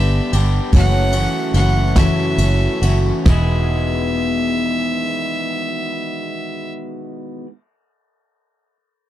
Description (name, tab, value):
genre	folk rock and heartland rock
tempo	45-51 BPM (dotted quarters)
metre	6/8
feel	straight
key	E major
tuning	A4 = 440 Hz
part	clear fiddle	melody	0.0-6.7 s	E5 to F#5	-24 LUFS	right 1 dB	none
part	picked twelve-string acoustic guitar	accompaniment	0.0-7.5 s	F#2 to G#4	-23 LUFS	left 3 dB	none
part	electric guitar through a small old amp	riff	0.0-7.5 s	E2 to G#4	-24 LUFS	right 1 dB	none
part	fingered electric bass	bass	0.0-7.4 s	E1 to G1	-17 LUFS	equal	none
part	soft brush drum kit	drums	0.3-3.5 s	crash cymbal, kick drum, ride cymbal, snare drum	-20 LUFS	equal	none
room	little or no reverb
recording	dry, close 1970s-style studio recording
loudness	-15 LUFS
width	side -13 dB against mid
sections	0.0-3.3 A section; 3.3-6.0 B section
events	slowing down 0.0-3.3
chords	0.0 G; 0.7 F#m7; 3.3 Emaj7